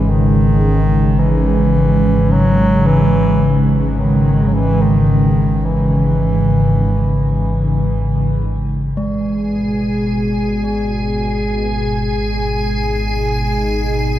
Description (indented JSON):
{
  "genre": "dark ambient drone",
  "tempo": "free time",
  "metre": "none",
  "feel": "none",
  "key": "G# minor",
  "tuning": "A4 = 439 Hz",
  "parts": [
    { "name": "mellow bass clarinet", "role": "melody", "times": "0.0-8.4 s", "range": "D#3 to F#3", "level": "-17 LUFS", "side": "equal", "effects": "shimmer reverb, tape echo" },
    { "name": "sweeping resonant pad", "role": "sustained chords", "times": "0.0-14.2 s", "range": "G#2 to D#4", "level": "-17 LUFS", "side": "equal", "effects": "chorus" },
    { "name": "deep rumbling drone", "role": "drone", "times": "0.0-14.2 s", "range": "G#1 to G#2", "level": "-19 LUFS", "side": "equal", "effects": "built-in reverb" },
    { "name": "gamelan-type bronze metallophone", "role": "arpeggios", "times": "9.0-14.2 s", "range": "G#3", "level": "-21 LUFS", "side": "equal", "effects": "tape echo" },
    { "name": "icy glass pad", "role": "texture", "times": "9.4-14.2 s", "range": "G#4 to G#5", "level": "-21 LUFS", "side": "left 1 dB", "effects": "chorus, built-in reverb, shimmer reverb" }
  ],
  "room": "wet cathedral reverb, RT60 5.2 s",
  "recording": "in a vast, echoing space",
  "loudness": "-13 LUFS",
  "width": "side -12 dB against mid",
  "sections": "0.0-9.0 A section; 9.0-14.2 B section",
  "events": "none",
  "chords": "0.0 C#madd9/G#; 9.0 G#m",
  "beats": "free time"
}